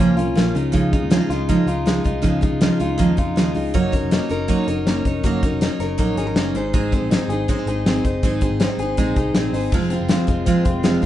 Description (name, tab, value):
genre	jangly indie pop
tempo	160 BPM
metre	4/4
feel	straight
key	unclear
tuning	A4 = 436 Hz
part	picked steel-string acoustic guitar	accompaniment	0.0-11.1 s	Bb2 to Db5	-21 LUFS	right 3 dB	none
part	direct-recorded clean electric guitar	arpeggios	0.0-11.1 s	F2 to Bb4	-24 LUFS	left 4 dB	tape echo
part	vintage muted picked electric bass	bass	0.0-11.1 s	F1 to F2	-26 LUFS	equal	none
part	modern studio drum kit	drums	0.0-11.1 s	crash cymbal, hi-hat, kick drum, snare drum	-21 LUFS	left 1 dB	none
room	light reverb, small room ambience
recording	rough home demo mix, nothing above 10.8 kHz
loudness	-17 LUFS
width	side -12 dB against mid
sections	0.0-9.7 A section; 9.7-11.1 B section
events	none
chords	0.0 Bbm; 0.6 Dbadd9; 3.7 Gb6; 6.5 Ab; 9.7 Fm